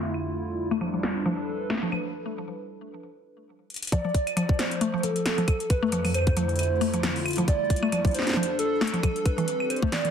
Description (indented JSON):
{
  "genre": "IDM",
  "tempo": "135 BPM",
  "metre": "4/4",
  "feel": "swing 56% on 16ths",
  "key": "F lydian",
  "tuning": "A4 = 440 Hz",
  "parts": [
    { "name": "warbly nostalgic lead", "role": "melody", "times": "0.0-0.1, 3.9-10.1 s", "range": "A4 to E5", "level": "-29 LUFS", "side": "right 2 dB", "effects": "chorus, ping-pong delay" },
    { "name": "hollow soft pad", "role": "sustained chords", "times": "0.0-10.1 s", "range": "F2 to E5", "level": "-31 LUFS", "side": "equal", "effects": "chorus" },
    { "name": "electro analog drum machine", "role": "drums", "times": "0.1-10.1 s", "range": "claves, hi-hat, snare drum", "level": "-30 LUFS", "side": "equal", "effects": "none" },
    { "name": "mallet-like synth pluck", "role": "arpeggios", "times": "0.7-10.1 s", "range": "E3 to A3", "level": "-29 LUFS", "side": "left 2 dB", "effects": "chorus, digital delay" },
    { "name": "electronic kick drum", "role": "drums", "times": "3.9-9.9 s", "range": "none", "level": "-23 LUFS", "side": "equal", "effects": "none" }
  ],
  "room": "moderate digital room reverb, RT60 0.8 s",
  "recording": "dense, heavily limited modern master, low-pass filter",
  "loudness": "-23 LUFS",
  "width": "side -8 dB against mid",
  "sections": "0.0-3.9 A section; 3.9-10.1 B section",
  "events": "filter sweep 0.0-3.9; break 2.1-3.9; drum fill 3.7",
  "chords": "0.4 Gadd9; 2.1 N.C.; 3.9 F; 5.7 Dm7/F; 7.5 Gsus2; 9.3 Cadd9"
}